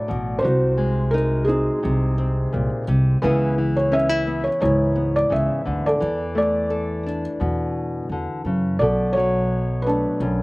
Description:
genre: acoustic folk-pop ballad.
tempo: 86 BPM.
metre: 4/4.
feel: straight.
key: unclear.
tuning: A4 = 438 Hz.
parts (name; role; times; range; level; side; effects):
felt-muted upright piano; melody; 0.0-10.4 s; D4 to E5; -22 LUFS; equal; slapback echo.
nylon-string guitar; accompaniment; 0.0-10.4 s; F#2 to A4; -25 LUFS; left 2 dB; none.
upright bass; bass; 0.1-10.4 s; A1 to F#2; -23 LUFS; equal; none.
room: little or no reverb.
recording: recorded outdoors, with no room sound.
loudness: -19 LUFS.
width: side -23 dB against mid.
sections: 0.0-10.4 A section.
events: none.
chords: 0.4 G#7/B#; 3.2 C#m7; 6.0 E7sus4; 8.8 Bm7.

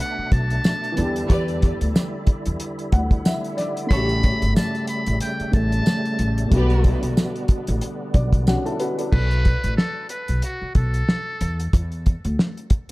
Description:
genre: hip hop, boom-bap hip-hop.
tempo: 92 BPM.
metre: 4/4.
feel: swing 57% on 16ths.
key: unclear.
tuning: A4 = 441 Hz.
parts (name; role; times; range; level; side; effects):
trumpet with metal mute; melody; 0.0-11.7 s; F#4 to B5; -29 LUFS; equal; high-pass filter, low-pass filter, tape echo.
dark upright piano; accompaniment; 0.0-9.3 s; A2 to A5; -27 LUFS; equal; cassette tape, high-pass filter, low-pass filter, tape echo.
bright tonewheel organ; sustained chords; 0.0-9.1 s; B2 to E4; -30 LUFS; equal; chorus vibrato, fast rotary speaker, high-pass filter, low-pass filter.
upright bass; bass; 0.2-12.4 s; G1 to E2; -23 LUFS; equal; none.
cloth-damped thuddy drum kit; drums; 0.3-12.9 s; crash cymbal, hi-hat, kick drum, snare drum; -20 LUFS; equal; none.
tambourine; percussion; 0.6-8.6 s; none; -37 LUFS; right 6 dB; none.
rich chamber string section; stabs; 1.3-7.0 s; B3 to D5; -30 LUFS; equal; high-pass filter, low-pass filter, tape echo.
room: small room reverb.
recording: echo-heavy mix.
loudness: -19 LUFS.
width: side -20 dB against mid.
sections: 0.0-9.1 A section; 9.1-12.9 B section.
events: none.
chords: 0.0 Bm7; 1.0 Em7; 3.9 A7; 6.5 Gmaj7; 9.1 Asus2; 11.4 N.C..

